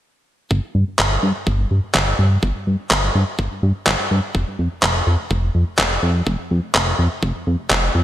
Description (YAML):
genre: italo disco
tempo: 125 BPM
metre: 4/4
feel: straight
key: unclear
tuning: A4 = 439 Hz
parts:
  - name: chorused synth bass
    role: bass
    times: 0.5-8.0 s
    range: F1 to G2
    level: -18 LUFS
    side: equal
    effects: tube saturation, digital delay
  - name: electronic kick drum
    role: drums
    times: 0.5-7.8 s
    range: none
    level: -24 LUFS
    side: equal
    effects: overdrive, high-pass filter on kick, high-pass filter on room
  - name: electronic handclaps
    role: drums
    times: 1.0-7.8 s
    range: none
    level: -19 LUFS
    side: equal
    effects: overdrive, gated reverb
room: light reverb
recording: bright 1980s-style digital production, lossy compression artefacts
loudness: -16 LUFS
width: side -12 dB against mid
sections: 0.5-8.0 A section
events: none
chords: none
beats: | 0.51 0.99 1.47 1.95 | 2.43 2.91 3.39 3.87 | 4.35 4.83 5.31 5.79 | 6.27 6.75 7.23 7.71